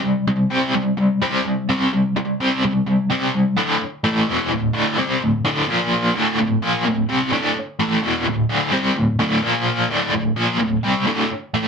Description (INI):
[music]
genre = rock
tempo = 128 BPM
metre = 4/4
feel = straight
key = D minor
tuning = A4 = 441 Hz
[part]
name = overdriven electric guitar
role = solo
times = 0.0-11.7 s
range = D2 to C4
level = -17 LUFS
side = equal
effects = tremolo, slapback echo
[sound]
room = moderate small room reverb, RT60 0.6 s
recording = band playing live in one room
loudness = -17 LUFS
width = side -6 dB against mid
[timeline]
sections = 0.0-3.6 A section; 3.6-11.7 B section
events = none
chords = 0.0 C5; 3.6 D5; 5.7 Bb5; 6.2 D5; 9.4 Bb5; 9.9 Dm